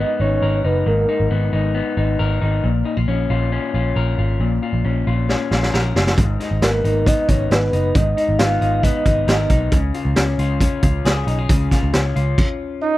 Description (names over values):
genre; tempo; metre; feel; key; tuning
jangly indie pop; 136 BPM; 4/4; straight; G# dorian; A4 = 440 Hz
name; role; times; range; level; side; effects
soft octave-layered synth lead; melody; 0.0-1.3, 6.6-9.6, 12.8-13.0 s; A#4 to E#5; -21 LUFS; right 2 dB; chorus, tremolo, tape echo
electric guitar through a small old amp; arpeggios; 0.0-12.9 s; G#2 to A#4; -23 LUFS; left 5 dB; tape echo
vintage muted picked electric bass; bass; 0.0-12.3 s; F#1 to C#2; -19 LUFS; equal; none
raw garage drum kit; drums; 5.3-12.5 s; crash cymbal, hi-hat, kick drum, snare drum; -18 LUFS; equal; none
growling trumpet; second line; 12.8-13.0 s; D#4; -19 LUFS; right 8 dB; none
room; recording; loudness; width
little or no reverb; dry, close 1970s-style studio recording; -16 LUFS; side -16 dB against mid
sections
0.0-13.0 A section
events
drum fill 5.3-6.2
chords
0.0 G#madd9; 2.6 A#m; 6.2 G#madd9; 9.7 C#